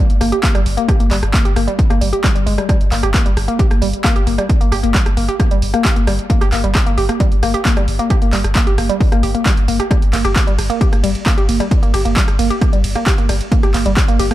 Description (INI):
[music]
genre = driving peak-time techno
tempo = 133 BPM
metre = 4/4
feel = straight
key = G minor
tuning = A4 = 440 Hz
[part]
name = woody wave-folded pluck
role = riff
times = 0.0-14.3 s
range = G3 to G4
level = -19 LUFS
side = equal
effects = chorus, sidechain pumping, ping-pong delay
[part]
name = saturated sub bass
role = bass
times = 0.1-14.3 s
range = G1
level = -19 LUFS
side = equal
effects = tube saturation, sidechain pumping, low-pass filter
[part]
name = punchy analog drum machine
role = drums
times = 0.1-14.3 s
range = handclaps, hi-hat, ride cymbal, rim click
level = -22 LUFS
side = right 1 dB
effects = overdrive
[part]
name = electronic kick drum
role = drums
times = 0.4-14.1 s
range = none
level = -15 LUFS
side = equal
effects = overdrive
[sound]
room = digital ambience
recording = dark, warm production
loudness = -12 LUFS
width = side -14 dB against mid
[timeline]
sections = 0.0-14.3 A section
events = none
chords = 0.0 Gm